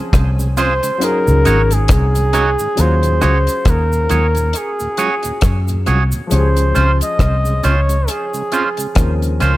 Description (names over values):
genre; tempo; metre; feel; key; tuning
lovers rock reggae; 68 BPM; 4/4; swing 58% on 16ths; Eb dorian; A4 = 439 Hz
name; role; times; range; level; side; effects
mellow tonewheel organ; accompaniment; 0.0-9.5 s; Eb2 to Gb4; -28 LUFS; right 3 dB; slow rotary speaker
warm concert grand piano; accompaniment; 0.0-9.6 s; F3 to Bb4; -24 LUFS; left 2 dB; tape echo
vintage muted fingered electric bass; bass; 0.1-9.6 s; Ab1 to Gb2; -15 LUFS; equal; none
deep reggae drum kit; drums; 0.1-9.6 s; hi-hat, kick drum, rim click; -17 LUFS; equal; tape echo
cabasa; percussion; 0.1-9.6 s; none; -31 LUFS; right 3 dB; tape echo
warm flugelhorn; melody; 0.6-9.4 s; Ab4 to Eb5; -19 LUFS; equal; tape echo
twangy electric guitar; stabs; 0.6-9.6 s; Db4 to Db5; -21 LUFS; right 4 dB; tape echo
room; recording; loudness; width
small room ambience; none; -13 LUFS; side -16 dB against mid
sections
0.0-2.8 A section; 2.8-9.6 B section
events
none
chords
0.0 Dbmaj7; 1.0 Ab7sus4; 2.8 Ebm11; 6.3 Dbmaj7